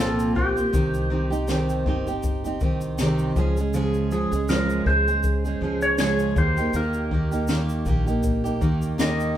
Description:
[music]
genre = acoustic pop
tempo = 80 BPM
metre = 4/4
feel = swing 55% on 16ths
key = unclear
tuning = A4 = 439 Hz
[part]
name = clean lap steel guitar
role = melody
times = 0.0-9.4 s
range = G4 to Eb5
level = -26 LUFS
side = equal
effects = none
[part]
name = picked steel-string acoustic guitar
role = accompaniment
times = 0.0-9.4 s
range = Bb2 to Ab4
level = -24 LUFS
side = right 1 dB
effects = none
[part]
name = upright bass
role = bass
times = 0.0-9.3 s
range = G1 to Eb2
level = -28 LUFS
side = equal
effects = none
[part]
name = jazz brush drum kit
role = drums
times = 0.2-9.4 s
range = kick drum, shaker, snare drum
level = -27 LUFS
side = left 1 dB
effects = none
[sound]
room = moderate stone room reverb, RT60 1.1 s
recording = band playing live in one room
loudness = -20 LUFS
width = side -11 dB against mid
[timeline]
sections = 0.0-9.4 A section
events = none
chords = 0.0 Bbsus2; 0.7 Cm; 3.4 Db; 6.4 Eb

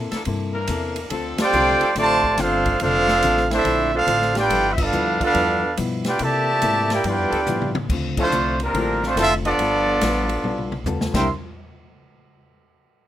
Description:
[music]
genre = jazz, big band swing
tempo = 142 BPM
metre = 4/4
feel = swing 66% on 8ths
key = unclear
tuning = A4 = 440 Hz
[part]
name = hollow-body jazz guitar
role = accompaniment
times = 0.0-11.3 s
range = G2 to A4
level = -28 LUFS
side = left 4 dB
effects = none
[part]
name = upright bass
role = bass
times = 0.0-11.3 s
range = F1 to C3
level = -28 LUFS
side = equal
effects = none
[part]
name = brilliant trombone section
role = sustained chords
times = 0.1-4.7, 7.3-7.4 s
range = E3 to Bb4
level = -30 LUFS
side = left 2 dB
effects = none
[part]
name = swinging big-band drum kit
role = drums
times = 0.1-11.2 s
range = crash cymbal, hi-hat, kick drum, ride cymbal, snare drum, toms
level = -29 LUFS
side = equal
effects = none
[part]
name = bright trumpet section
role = melody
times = 1.4-11.3 s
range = A3 to C6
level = -19 LUFS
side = right 1 dB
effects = none
[part]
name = warm trombone section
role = second line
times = 1.4-11.3 s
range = Bb2 to G4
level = -26 LUFS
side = right 3 dB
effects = none
[part]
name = warm grand piano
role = accompaniment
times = 8.2-11.3 s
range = F3 to Bb4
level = -28 LUFS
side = left 3 dB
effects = none
[sound]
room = light reverb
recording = rough home demo mix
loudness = -18 LUFS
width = side -12 dB against mid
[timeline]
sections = 0.0-7.9 A section; 7.9-11.3 B section; 11.3-13.0 C section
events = band accent 1.3, 4.7, 8.1; drum fill 7.5-7.9, 10.4-11.3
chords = 0.0 C13; 1.1 Dm7; 4.5 G13; 6.2 C13; 7.0 G13; 7.9 Dm7; 9.6 G9; 11.1 C9; 11.3 N.C.

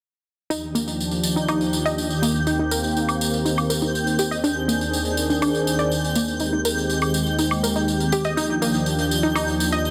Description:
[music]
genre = progressive house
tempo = 122 BPM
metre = 4/4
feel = straight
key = Eb major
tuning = A4 = 440 Hz
[part]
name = filtered supersaw swell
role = sustained chords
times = 0.5-9.9 s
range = Eb2 to Ab4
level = -25 LUFS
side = equal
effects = phaser
[part]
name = analog pluck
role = arpeggios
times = 0.5-9.8 s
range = Bb3 to Eb5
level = -27 LUFS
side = equal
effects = chorus, digital delay
[part]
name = tambourine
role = percussion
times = 0.5-9.9 s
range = none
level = -31 LUFS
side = equal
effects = none
[part]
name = twinkling granular texture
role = texture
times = 1.3-9.9 s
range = G6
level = -33 LUFS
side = equal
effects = built-in reverb
[part]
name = woodblock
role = drums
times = 1.5-9.5 s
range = none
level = -31 LUFS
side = equal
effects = overdrive, low-pass filter on perc
[sound]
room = moderate lush hall reverb, RT60 1.6 s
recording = dense, heavily limited modern master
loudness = -22 LUFS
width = mono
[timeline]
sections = 0.5-9.9 A section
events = filter sweep on drum 0.5-9.9; filter sweep on synth pluck 0.5-9.9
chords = 0.5 Ebmaj7; 2.5 Eb6; 4.4 Bb7/Eb (rootless); 6.4 Abmaj7/Eb; 8.4 Ebmaj7

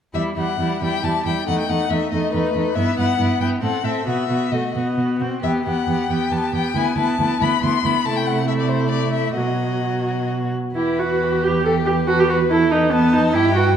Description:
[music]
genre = quick classical-period movement for string quartet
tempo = 129-143 BPM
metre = 3/4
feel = rubato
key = E minor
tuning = A4 = 441 Hz
[part]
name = rich violin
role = melody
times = 0.1-13.8 s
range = G4 to C6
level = -25 LUFS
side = left 9 dB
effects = none
[part]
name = rich violin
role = second line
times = 0.1-13.8 s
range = D#4 to A5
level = -25 LUFS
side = left 3 dB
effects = none
[part]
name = rich viola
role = accompaniment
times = 0.1-13.8 s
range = F#3 to A4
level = -21 LUFS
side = right 2 dB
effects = none
[part]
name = warm cello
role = bass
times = 0.1-13.8 s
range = D2 to C3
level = -23 LUFS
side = right 4 dB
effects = none
[sound]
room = moderate scoring stage reverb, RT60 1.7 s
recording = dark, warm production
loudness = -17 LUFS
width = side -8 dB against mid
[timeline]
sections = 0.1-10.8 A section; 10.8-13.8 A section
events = none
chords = 0.1 Em; 1.5 B7/E; 2.8 Em/G; 3.6 Am; 4.1 B; 5.4 Em; 6.8 E5/D; 8.1 Am/C; 9.4 B; 10.8 Em; 12.1 Esus4

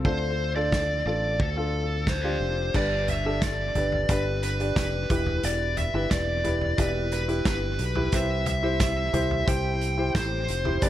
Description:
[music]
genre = piano-driven pop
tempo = 89 BPM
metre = 4/4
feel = straight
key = unclear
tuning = A4 = 441 Hz
[part]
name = clear concert grand piano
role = accompaniment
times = 0.0-10.9 s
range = G2 to D5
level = -30 LUFS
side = equal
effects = analog delay
[part]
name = fingered electric bass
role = bass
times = 0.0-10.9 s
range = E1 to D2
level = -29 LUFS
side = equal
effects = none
[part]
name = loose indie drum kit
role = drums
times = 0.0-10.9 s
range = crash cymbal, hi-hat, kick drum, snare drum, toms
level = -28 LUFS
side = equal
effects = none
[part]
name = smooth overdriven lead guitar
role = melody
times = 0.1-10.9 s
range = A4 to G5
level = -28 LUFS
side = equal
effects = analog delay
[sound]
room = light reverb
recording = echo-heavy mix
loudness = -23 LUFS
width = side -12 dB against mid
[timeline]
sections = 0.0-2.7 A section; 2.7-10.9 B section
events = none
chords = 0.1 Dm; 2.7 G; 5.1 Em; 8.1 C

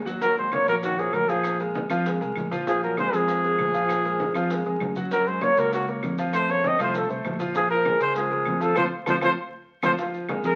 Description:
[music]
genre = Afro-Cuban jazz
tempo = 196 BPM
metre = 4/4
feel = straight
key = Bb minor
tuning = A4 = 440 Hz
[part]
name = fingered electric bass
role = bass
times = 0.0-10.6 s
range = Bb1 to Gb2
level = -34 LUFS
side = equal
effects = none
[part]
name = clear grand piano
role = accompaniment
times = 0.1-10.6 s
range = F3 to Gb5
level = -31 LUFS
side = equal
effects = none
[part]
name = congas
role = percussion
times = 0.1-10.6 s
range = none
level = -40 LUFS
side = equal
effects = none
[part]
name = maracas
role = percussion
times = 0.1-10.6 s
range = none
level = -51 LUFS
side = equal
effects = none
[part]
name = breathy trumpet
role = melody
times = 0.2-10.6 s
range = Gb4 to Eb5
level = -25 LUFS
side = equal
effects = none
[part]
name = warm trombone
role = second line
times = 0.2-9.9 s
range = Db3 to C4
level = -35 LUFS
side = equal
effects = none
[part]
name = bongos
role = percussion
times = 0.2-10.6 s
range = none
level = -40 LUFS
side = equal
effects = none
[part]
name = claves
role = percussion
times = 0.5-10.4 s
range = none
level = -40 LUFS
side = equal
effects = none
[sound]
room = wet studio reverb, RT60 0.7 s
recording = very old 78 rpm record, vinyl crackle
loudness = -24 LUFS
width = mono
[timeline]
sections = 0.0-10.0 A section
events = drum fill 0.0; band accent 8.8-10.0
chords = 0.2 Ebm7; 1.4 Bb5; 5.1 Gb; 6.3 F; 7.6 Bbm7; 8.8 F; 10.0 Bb7(no3)

